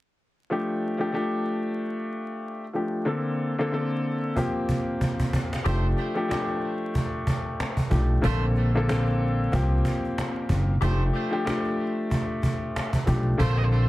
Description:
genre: hip hop, boom-bap hip-hop.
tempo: 93 BPM.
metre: 4/4.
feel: swing 57% on 16ths.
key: F major.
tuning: A4 = 441 Hz.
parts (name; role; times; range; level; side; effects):
warm upright piano; accompaniment; 0.5-13.9 s; D3 to A4; -27 LUFS; left 1 dB; cassette tape, high-pass filter, low-pass filter.
cajon; drums; 4.4-13.8 s; none; -28 LUFS; equal; none.
warm horn section; stabs; 5.6-13.7 s; A3 to C5; -34 LUFS; right 2 dB; high-pass filter, low-pass filter, tape echo.
upright bass; bass; 5.7-13.9 s; F1 to C2; -23 LUFS; equal; none.
room: light reverb.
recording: dense, heavily limited modern master, vinyl crackle.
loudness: -23 LUFS.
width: side -17 dB against mid.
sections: 0.5-5.7 A section; 5.7-13.9 B section.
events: drum fill 4.4-5.7.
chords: 0.5 F69; 3.1 Bbmaj9; 4.4 C7sus4; 5.7 F69; 8.2 Bbmaj9; 9.5 C7sus4; 10.8 F69.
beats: | 0.49 1.14 1.78 2.43 | 3.08 3.72 4.37 5.01 | 5.66 6.30 6.95 7.59 | 8.24 8.88 9.53 10.17 | 10.82 11.46 12.11 12.75 | 13.40.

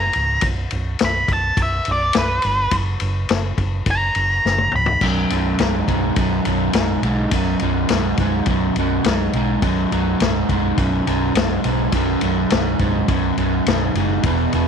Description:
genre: blues rock power trio and southern rock.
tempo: 104 BPM.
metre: 4/4.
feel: straight.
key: unclear.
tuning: A4 = 440 Hz.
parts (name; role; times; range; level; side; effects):
octave-fuzz lead guitar; melody; 0.0-5.0 s; B4 to B5; -20 LUFS; equal; distortion.
vintage muted fingered electric bass; bass; 0.0-14.7 s; B0 to B1; -22 LUFS; right 1 dB; none.
vintage drum kit; drums; 0.1-14.7 s; crash cymbal, kick drum, ride cymbal, snare drum, toms; -23 LUFS; left 4 dB; none.
overdriven electric guitar; riff; 5.0-14.7 s; B1 to B2; -19 LUFS; right 1 dB; none.
room: light reverb, studio reverb.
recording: 1960s-style stereo.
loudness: -16 LUFS.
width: side -6 dB against mid.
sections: 0.0-5.0 A section; 5.0-14.7 B section.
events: lead electric guitar solo 0.0-5.0; drum fill 4.5-5.0.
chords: 0.4 N.C.; 2.7 F#; 5.0 B5.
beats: | 0.44 1.02 1.59 2.16 | 2.74 3.31 3.88 4.46 | 5.03 5.61 6.18 6.76 | 7.33 7.91 8.48 9.06 | 9.64 10.21 10.79 11.37 | 11.94 12.52 13.10 13.67 | 14.25.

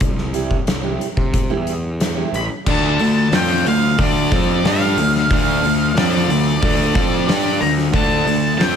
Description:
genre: quiet-loud alternative rock.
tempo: 91 BPM.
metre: 4/4.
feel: straight.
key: D minor.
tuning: A4 = 443 Hz.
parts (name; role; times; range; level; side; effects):
fuzz picked electric bass; bass; 0.0-8.8 s; A1 to C3; -22 LUFS; equal; overdrive.
oversized low-tuned drum kit; drums; 0.0-8.8 s; crash cymbal, hi-hat, kick drum, snare drum; -20 LUFS; equal; none.
fingerpicked steel-string acoustic guitar; arpeggios; 0.2-2.4 s; E3 to G4; -26 LUFS; right 8 dB; slapback echo.
octave-fuzz lead guitar; melody; 2.4-8.8 s; D5 to B5; -21 LUFS; right 1 dB; distortion.
mellow tonewheel organ; sustained chords; 2.6-8.8 s; D3 to D5; -31 LUFS; right 2 dB; none.
overdriven semi-hollow guitar; riff; 2.7-8.8 s; D3 to G4; -21 LUFS; right 11 dB; none.
thick fuzz guitar; riff; 2.7-8.8 s; D3 to G4; -21 LUFS; left 12 dB; distortion.
room: light reverb, studio reverb.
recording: none.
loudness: -15 LUFS.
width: side -8 dB against mid.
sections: 0.0-2.7 A section; 2.7-8.8 B section.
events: none.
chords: 0.0 C; 2.7 Dm.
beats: | 0.01 0.68 1.34 2.01 | 2.67 3.33 3.99 4.65 | 5.31 5.97 6.63 7.28 | 7.94 8.60.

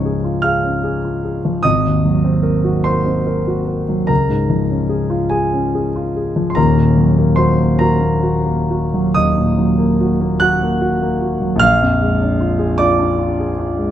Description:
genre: classical, romantic nocturne for solo piano.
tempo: 43-52 BPM (dotted quarters).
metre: 12/8.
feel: rubato.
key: Db major.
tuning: A4 = 436 Hz.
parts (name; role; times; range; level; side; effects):
warm concert grand piano; solo; 0.0-13.9 s; Eb1 to Gb6; -14 LUFS; equal; none.
room: moderate recital hall reverb, RT60 1.5 s.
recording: close, detailed microphones.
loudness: -14 LUFS.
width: side -11 dB against mid.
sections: 0.0-13.9 A section.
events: none.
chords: 0.0 Db; 1.7 Ab9; 4.1 Db; 6.6 Ebm; 11.6 Bb7.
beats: 0.45 | 1.65 2.86 4.10 5.33 | 6.57 7.81 9.16 10.41 | 11.61 12.79.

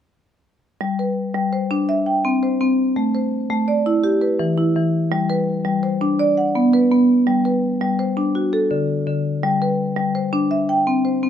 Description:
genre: southern african traditional.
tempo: 111 BPM (dotted quarters).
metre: 12/8.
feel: straight.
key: G major.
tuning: A4 = 439 Hz.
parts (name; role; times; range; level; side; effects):
marimba with medium mallets; arpeggios; 0.8-11.3 s; D3 to G5; -17 LUFS; equal; none.
room: light reverb.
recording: close, detailed microphones.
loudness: -17 LUFS.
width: side -9 dB against mid.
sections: 0.8-11.3 A section.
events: none.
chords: 0.8 G; 1.9 C; 3.0 Am; 4.0 Em; 5.1 G; 6.2 Bm; 7.3 G; 8.4 D; 9.4 G; 10.5 C.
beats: | 0.81 1.35 1.88 2.42 | 2.96 3.50 4.04 4.58 | 5.12 5.66 6.20 6.74 | 7.28 7.82 8.35 8.89 | 9.43 9.97 10.51 11.05.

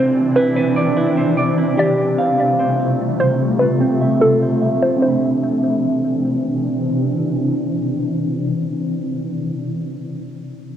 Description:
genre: hip hop.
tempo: 148 BPM.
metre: 4/4.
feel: half-time.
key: C major.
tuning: A4 = 440 Hz.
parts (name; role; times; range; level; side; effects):
hollow square pluck; melody; 0.0-6.2 s; A4 to D5; -20 LUFS; equal; chorus, low-pass filter, cassette tape, tape echo.
shimmering ambient pad; sustained chords; 0.0-9.0 s; C3 to D4; -19 LUFS; left 1 dB; chorus, built-in reverb, low-pass filter, cassette tape.
clean electric guitar; arpeggios; 0.0-9.2 s; C4 to B5; -19 LUFS; right 2 dB; low-pass filter, cassette tape, tape echo.
room: moderate spring reverb, RT60 1.9 s.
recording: home recording on cassette.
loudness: -15 LUFS.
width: side -9 dB against mid.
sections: 0.0-5.0 A section; 5.0-8.3 B section.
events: filter sweep 0.0-5.0.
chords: 0.0 Cmaj9; 1.8 G9sus4/C; 3.4 Fmaj7/C; 5.0 Cmaj9.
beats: | 0.16 0.56 0.97 1.38 | 1.78 2.19 2.59 3.00 | 3.40 3.81 4.21 4.62 | 5.02 5.43 5.83 6.24 | 6.64 7.05 7.46 7.86.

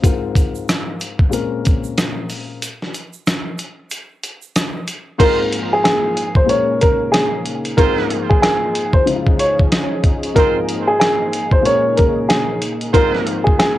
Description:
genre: hip hop, boom-bap hip-hop.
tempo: 93 BPM.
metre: 4/4.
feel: swing 60% on 16ths.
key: Ab major.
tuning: A4 = 440 Hz.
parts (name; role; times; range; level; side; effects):
dark concert grand piano; accompaniment; 0.0-13.8 s; Ab2 to C5; -23 LUFS; left 6 dB; cassette tape, high-pass filter, low-pass filter.
dusty soul sampler-style drum kit; drums; 0.0-13.8 s; crash cymbal, hi-hat, kick drum, rim click, snare drum; -17 LUFS; equal; none.
egg shaker; percussion; 0.0-5.1 s; none; -37 LUFS; right 9 dB; none.
dark upright piano; melody; 5.2-13.8 s; Ab4 to Db5; -16 LUFS; equal; high-pass filter, low-pass filter, analog delay.
dark analog pad; sustained chords; 5.2-13.8 s; Db3 to Ab4; -25 LUFS; equal; chorus, high-pass filter, low-pass filter.
clear horn section; stabs; 5.2-13.4 s; C4 to C5; -25 LUFS; right 8 dB; high-pass filter, low-pass filter, analog delay.
room: studio ambience.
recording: home recording on cassette.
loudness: -14 LUFS.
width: side -14 dB against mid.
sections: 0.0-5.2 A section; 5.2-13.8 B section.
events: break 2.6-5.2.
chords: 0.0 Ab69; 1.3 Bbm9; 2.6 N.C.; 5.2 Ab69; 6.5 Bbm7; 7.8 Ab69; 9.1 Dbmaj7; 10.4 Ab69; 11.7 Bbm7; 12.9 Ab69.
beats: | 0.04 0.68 1.33 1.97 | 2.62 3.26 3.91 4.55 | 5.20 5.84 6.49 7.13 | 7.78 8.43 9.07 9.71 | 10.36 11.01 11.65 12.30 | 12.94 13.59.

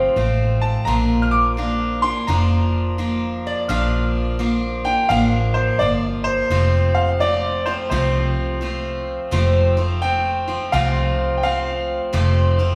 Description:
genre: honky-tonk and classic country.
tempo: 85 BPM.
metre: 4/4.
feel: swing 65% on 8ths.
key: F major.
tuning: A4 = 440 Hz.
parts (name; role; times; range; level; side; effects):
bright upright piano; melody; 0.0-12.0 s; C5 to F6; -24 LUFS; equal; none.
picked steel-string acoustic guitar; accompaniment; 0.0-12.8 s; F2 to F4; -24 LUFS; equal; none.
vintage muted fingered electric bass; bass; 0.0-12.8 s; F1 to C2; -24 LUFS; equal; none.
lap resonator guitar; second line; 3.5-4.6 s; D5 to F5; -29 LUFS; equal; none.
room: wet recital hall reverb, RT60 1.8 s.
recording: recorded in a church or concert hall, studio reverb.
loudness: -20 LUFS.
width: mono.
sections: 0.0-12.8 A section.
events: none.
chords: 0.0 F; 0.9 Bb; 6.5 F.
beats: 0.16 | 0.87 1.57 2.28 2.98 | 3.69 4.39 5.10 5.80 | 6.51 7.21 7.92 8.62 | 9.32 10.03 10.73 11.43 | 12.14.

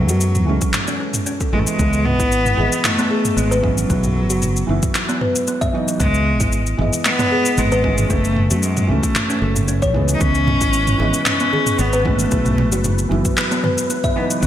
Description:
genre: organic downtempo.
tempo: 114 BPM.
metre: 4/4.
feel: swing 54% on 16ths.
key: C# minor.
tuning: A4 = 443 Hz.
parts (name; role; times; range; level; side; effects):
clear cello; melody; 0.0-14.5 s; F#3 to D#4; -21 LUFS; left 1 dB; ping-pong delay.
felt-muted upright piano; accompaniment; 0.0-14.5 s; E3 to D#5; -25 LUFS; right 2 dB; wide subtle chorus, sidechain pumping, ping-pong delay.
kalimba; arpeggios; 0.0-14.5 s; B3 to E5; -23 LUFS; equal; ping-pong delay.
fretless electric bass; bass; 0.0-14.5 s; F#1 to F#2; -19 LUFS; equal; none.
deep house drum kit; drums; 0.1-14.5 s; handclaps, shaker, toms; -22 LUFS; equal; gated reverb.
electronic kick drum; drums; 0.6-14.5 s; none; -22 LUFS; equal; none.
congas and bongos; percussion; 10.2-14.5 s; none; -28 LUFS; right 2 dB; none.
wind-like tuned noise texture; texture; 10.6-14.5 s; B4; -30 LUFS; left 1 dB; built-in reverb, lush chorus.
room: moderate plate reverb, RT60 2.6 s.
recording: bright 1980s-style digital production.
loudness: -15 LUFS.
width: side -11 dB against mid.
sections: 0.0-14.5 A section.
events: none.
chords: 0.0 F#m7; 1.8 C#m7; 3.9 Bsus4; 6.0 C#m7; 8.1 F#m7; 10.2 C#m7; 12.3 Bsus4.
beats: 0.21 0.74 1.27 | 1.79 2.32 2.85 3.37 | 3.90 4.42 4.95 5.48 | 6.00 6.53 7.05 7.58 | 8.11 8.63 9.16 9.69 | 10.21 10.74 11.27 11.79 | 12.32 12.85 13.37 13.90 | 14.42.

